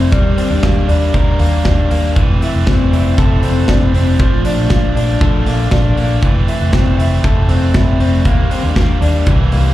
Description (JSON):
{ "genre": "jangly indie pop", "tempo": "118 BPM", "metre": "4/4", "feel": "straight", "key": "F major", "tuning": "A4 = 440 Hz", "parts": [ { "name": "biting overdriven guitar", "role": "accompaniment", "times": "0.0-9.7 s", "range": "F2 to E4", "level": "-22 LUFS", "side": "right 7 dB", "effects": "slapback echo" }, { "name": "electric guitar through a small old amp", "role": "arpeggios", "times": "0.0-9.7 s", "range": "E3 to Bb4", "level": "-18 LUFS", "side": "left 4 dB", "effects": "spring reverb, analog delay, slapback echo" }, { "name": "vintage muted fingered electric bass", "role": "bass", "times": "0.0-9.7 s", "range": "F1 to Eb2", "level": "-15 LUFS", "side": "equal", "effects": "none" }, { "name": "big rock drum kit", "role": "drums", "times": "0.1-9.6 s", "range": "hi-hat, kick drum, snare drum", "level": "-15 LUFS", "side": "equal", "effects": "none" } ], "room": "studio ambience", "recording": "live gig heard through the venue's PA, club reverb", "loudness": "-11 LUFS", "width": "side -14 dB against mid", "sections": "0.0-9.7 A section", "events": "none", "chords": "0.1 Ebmaj7; 2.2 Fmaj7; 4.2 Bbmaj7; 6.2 Fmaj7; 8.3 Ebmaj7" }